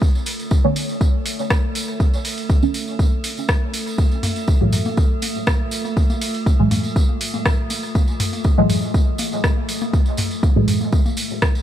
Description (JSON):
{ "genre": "dub techno", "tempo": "121 BPM", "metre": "4/4", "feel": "straight", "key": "unclear", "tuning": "A4 = 444 Hz", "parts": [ { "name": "electronic kick drum", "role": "drums", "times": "0.0-11.5 s", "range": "none", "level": "-17 LUFS", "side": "equal", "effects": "none" }, { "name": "tambourine", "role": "percussion", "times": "0.0-11.6 s", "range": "none", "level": "-31 LUFS", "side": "right 3 dB", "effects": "none" }, { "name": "metallic inharmonic drone", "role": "texture", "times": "0.0-11.6 s", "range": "A3", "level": "-28 LUFS", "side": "equal", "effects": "chorus, built-in reverb, sidechain pumping" }, { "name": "soft vintage rhythm box", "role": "drums", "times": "0.3-11.5 s", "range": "hi-hat, rim click", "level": "-27 LUFS", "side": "equal", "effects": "none" }, { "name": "deep mellow chord stab", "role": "stabs", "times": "0.6-10.7 s", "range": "A2 to C#4", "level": "-22 LUFS", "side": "right 1 dB", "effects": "chorus, phaser, sidechain pumping, dub echo" }, { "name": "electronic congas and toms", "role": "percussion", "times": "4.0-11.5 s", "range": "none", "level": "-28 LUFS", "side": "left 1 dB", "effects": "overdrive, sidechain pumping on perc, sidechain pumping on toms, dub echo" } ], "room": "digital ambience", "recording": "none", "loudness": "-17 LUFS", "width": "side -11 dB against mid", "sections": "0.0-11.6 A section", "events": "none", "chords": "0.0 Bm9; 4.0 F#m9", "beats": "| 0.02 0.51 1.01 1.50 | 2.00 2.50 2.99 3.49 | 3.98 4.48 4.98 5.47 | 5.97 6.46 6.96 7.46 | 7.95 8.45 8.94 9.44 | 9.93 10.43 10.93 11.42" }